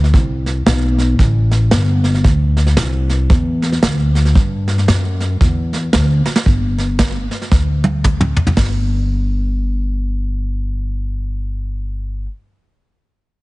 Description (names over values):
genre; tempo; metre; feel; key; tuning
honky-tonk and classic country; 114 BPM; 4/4; swing 61% on 8ths; G major; A4 = 440 Hz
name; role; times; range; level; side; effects
upright bass; bass; 0.0-12.2 s; G1 to G2; -15 LUFS; equal; none
vintage brush drum kit; drums; 0.0-8.7 s; hi-hat, kick drum, snare drum, toms; -16 LUFS; right 1 dB; none
room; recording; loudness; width
little or no reverb; heavily compressed radio sound, nothing above 10.4 kHz; -14 LUFS; side -21 dB against mid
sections
0.0-6.5 A section; 6.5-8.6 B section; 8.6-12.8 C section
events
drum fill 6.2, 7.5-8.6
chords
none